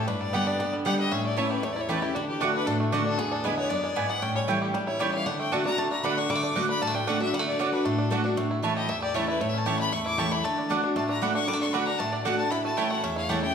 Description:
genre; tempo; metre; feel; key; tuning
bluegrass; 232 BPM; 4/4; straight; D major; A4 = 440 Hz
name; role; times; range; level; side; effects
bluegrass banjo; melody; 0.0-13.5 s; G3 to G4; -31 LUFS; right 2 dB; none
clear fiddle; melody; 0.0-13.5 s; D4 to D6; -30 LUFS; left 3 dB; none
picked steel-string acoustic guitar; accompaniment; 0.0-13.5 s; E2 to G4; -28 LUFS; left 1 dB; none
mandolin; stabs; 0.3-13.4 s; A3 to A5; -31 LUFS; right 4 dB; none
room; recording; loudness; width
wet recital hall reverb, RT60 1.6 s; recorded in a church or concert hall; -24 LUFS; side -7 dB against mid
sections
0.0-6.3 A section; 6.3-13.5 A section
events
fiddle solo 0.0-13.5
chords
0.1 G; 1.1 A; 2.2 D; 3.2 E7; 4.2 A7; 5.3 D; 8.4 A; 10.4 D; 12.5 A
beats
| 0.08 0.34 0.60 0.85 | 1.11 1.37 1.63 1.89 | 2.15 2.41 2.67 2.93 | 3.19 3.45 3.71 3.97 | 4.23 4.49 4.75 5.01 | 5.26 5.52 5.78 6.04 | 6.30 6.56 6.82 7.08 | 7.34 7.60 7.86 8.12 | 8.37 8.63 8.89 9.15 | 9.41 9.67 9.93 10.19 | 10.45 10.70 10.96 11.22 | 11.48 11.74 12.00 12.26 | 12.52 12.78 13.03 13.29

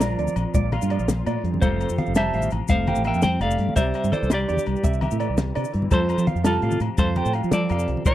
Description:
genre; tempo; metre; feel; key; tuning
highlife guitar band; 112 BPM (dotted quarters); 12/8; straight; F major; A4 = 440 Hz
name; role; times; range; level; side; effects
clean electric guitar; melody; 0.0-8.1 s; F4 to G5; -26 LUFS; left 1 dB; tremolo
breathy trombone; second line; 0.0-8.1 s; C3 to C4; -31 LUFS; right 6 dB; none
semi-hollow electric guitar; accompaniment; 0.0-8.1 s; F2 to G4; -33 LUFS; left 5 dB; ensemble chorus
electric guitar through a small old amp; arpeggios; 0.0-8.1 s; C5 to C6; -30 LUFS; right 8 dB; spring reverb, slapback echo
mellow fretless electric bass; bass; 0.0-8.1 s; F1 to F3; -24 LUFS; equal; ensemble chorus
compact cocktail drum kit; drums; 0.0-8.1 s; hi-hat, kick drum, snare drum; -22 LUFS; equal; none
congas; percussion; 0.0-8.1 s; none; -27 LUFS; left 4 dB; none
maracas; percussion; 0.0-8.1 s; none; -40 LUFS; left 14 dB; none
agogo bells; percussion; 0.4-8.1 s; none; -36 LUFS; left 10 dB; none
room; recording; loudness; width
little or no reverb; dry, close 1970s-style studio recording; -20 LUFS; side -13 dB against mid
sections
0.0-8.1 A section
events
none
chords
0.0 Bb; 1.6 Fadd9; 3.8 Cadd9; 5.9 Fadd9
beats
0.01 0.55 1.09 | 1.62 2.16 2.70 3.23 | 3.77 4.31 4.84 5.38 | 5.91 6.45 6.98 7.52 | 8.05

